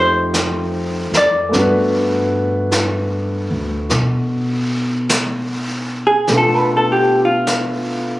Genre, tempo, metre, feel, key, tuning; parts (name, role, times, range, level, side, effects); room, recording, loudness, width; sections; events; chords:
jazz ballad; 50 BPM; 4/4; swing 66% on 8ths; G major; A4 = 440 Hz
vintage hollow-body jazz guitar; melody; 0.0-8.2 s; F4 to D5; -16 LUFS; equal
warm concert grand piano; accompaniment; 0.0-8.2 s; A3 to B4; -20 LUFS; equal
upright bass; bass; 0.0-8.2 s; D2 to B2; -21 LUFS; equal
vintage brush drum kit; drums; 0.3-8.2 s; brushed snare drum, hi-hat, snare drum; -22 LUFS; equal
moderate studio reverb, RT60 0.5 s; recorded on a phone in the room, club reverb, compression; -15 LUFS; side -17 dB against mid
0.0-8.2 A section
hollow-body jazz guitar solo 0.0-8.2
0.0 F9; 1.5 Gmaj9; 6.3 Bm7b5